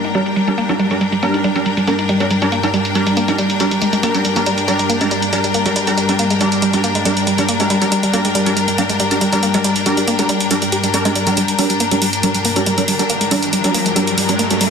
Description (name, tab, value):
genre	driving peak-time techno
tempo	139 BPM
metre	4/4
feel	straight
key	G minor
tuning	A4 = 440 Hz
part	woody wave-folded pluck	riff	0.0-14.7 s	G3 to G4	-20 LUFS	right 2 dB	chorus, tape echo
part	deep dark ambient pad	drone	0.0-14.7 s	G2 to G3	-22 LUFS	left 2 dB	chorus, built-in reverb
part	electronic hi-hat	drums	0.0-14.7 s	none	-21 LUFS	right 1 dB	overdrive, low-pass filter on hats, low-pass filter on snare, low-pass filter on cymbals, low-pass filter on room
part	bright symphonic string section	texture	0.0-14.7 s	D4 to G5	-20 LUFS	left 4 dB	none
part	rave stab	stabs	0.1-14.6 s	G3 to Bb4	-20 LUFS	right 2 dB	chorus, built-in reverb, ping-pong delay
part	riser	sound effects	12.4-14.7 s	none	-24 LUFS	left 1 dB	none
room	wet plate reverb, RT60 1.8 s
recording	dense, heavily limited modern master, lossy compression artefacts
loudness	-14 LUFS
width	side -6 dB against mid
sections	0.0-11.4 A section; 11.4-14.7 B section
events	filter sweep on synth arpeggio sound 0.0-11.4, 11.4-14.7; build-up 11.4-14.7; riser 12.4-14.7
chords	0.0 Gm